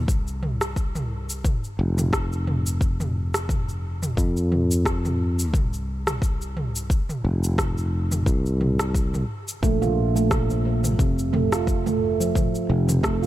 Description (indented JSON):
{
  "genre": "organic downtempo",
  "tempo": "88 BPM",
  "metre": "4/4",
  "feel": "swing 55% on 16ths",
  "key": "F major",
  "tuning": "A4 = 440 Hz",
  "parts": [
    { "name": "sustaining fretless electric bass", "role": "bass", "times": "0.0-13.3 s", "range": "F1 to F2", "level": "-24 LUFS", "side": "equal", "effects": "tube saturation, sidechain pumping" },
    { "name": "deep house drum kit", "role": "drums", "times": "0.1-13.3 s", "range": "rim click, shaker, toms", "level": "-28 LUFS", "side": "equal", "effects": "none" },
    { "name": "electronic kick drum", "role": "drums", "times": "0.1-13.2 s", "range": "none", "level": "-24 LUFS", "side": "left 1 dB", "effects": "none" },
    { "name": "handpan", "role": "arpeggios", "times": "9.6-13.3 s", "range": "C3 to F4", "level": "-23 LUFS", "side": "right 3 dB", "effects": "digital delay" }
  ],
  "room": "digital ambience",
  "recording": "none",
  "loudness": "-21 LUFS",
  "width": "side -14 dB against mid",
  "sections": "0.0-13.3 A section",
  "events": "none",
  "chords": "0.0 F5; 9.6 Bb5"
}